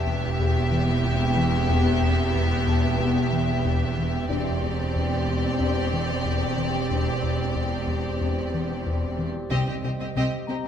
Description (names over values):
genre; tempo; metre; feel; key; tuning
cinematic, suspense film score; 92 BPM; 4/4; straight; unclear; A4 = 440 Hz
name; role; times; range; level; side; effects
rich symphonic violin section; melody; 0.0-10.6 s; D5 to E5; -34 LUFS; left 4 dB; none
clear symphonic violin section; second line; 0.0-10.7 s; G4; -33 LUFS; left 2 dB; none
clear symphonic viola section; accompaniment; 0.0-10.7 s; B3 to C4; -32 LUFS; equal; none
glass harmonica; sustained chords; 0.0-10.7 s; G4 to E5; -34 LUFS; right 1 dB; none
bright symphonic double bass section; bass; 0.0-10.6 s; E1 to C2; -28 LUFS; right 5 dB; none
rich symphonic cello section; bass; 0.0-10.7 s; C2 to E2; -30 LUFS; right 1 dB; none
concert harp; texture; 0.0-10.7 s; B4 to B5; -43 LUFS; left 8 dB; none
rubbery square bass; riff; 0.1-10.7 s; E2 to C4; -28 LUFS; left 2 dB; none
dark French horn section; sustained chords; 0.4-8.4 s; B3 to G4; -32 LUFS; left 5 dB; none
timpani; percussion; 9.5-10.5 s; C3; -34 LUFS; equal; none
room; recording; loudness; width
wet recital hall reverb, RT60 1.5 s; none; -22 LUFS; side -9 dB against mid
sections
0.0-9.5 A section; 9.5-10.7 B section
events
none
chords
0.0 Em; 4.3 Cadd9/E; 9.5 Cm